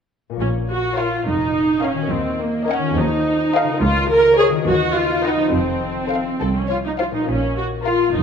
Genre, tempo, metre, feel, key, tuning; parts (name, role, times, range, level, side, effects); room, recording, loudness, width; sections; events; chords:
cinematic; 70 BPM (dotted quarters); 6/8; straight; Bb minor; A4 = 440 Hz
concert harp; arpeggios; 0.3-8.2 s; Bb2 to Eb5; -25 LUFS; left 8 dB
rich studio viola section; accompaniment; 0.4-8.2 s; Bb3 to Bb4; -18 LUFS; right 1 dB
rich studio cello section; bass; 0.4-8.2 s; C2 to Bb2; -26 LUFS; right 2 dB
rich studio double bass section; bass; 0.4-8.2 s; F1 to Eb2; -28 LUFS; right 2 dB
warm studio violin section; melody; 1.0-8.1 s; Db5 to Gb5; -26 LUFS; left 3 dB
dark studio violin section; second line; 1.0-8.1 s; A4 to Eb5; -27 LUFS; left 3 dB
moderate scoring stage reverb, RT60 1.8 s; minimal, uncompressed stereo recording; -17 LUFS; side -7 dB against mid
0.4-8.2 A section
0.4 Bbm; 2.1 Ebm; 3.0 F7/Eb; 3.8 Bbm/Db; 4.7 B/D#; 5.5 F; 7.3 Bb5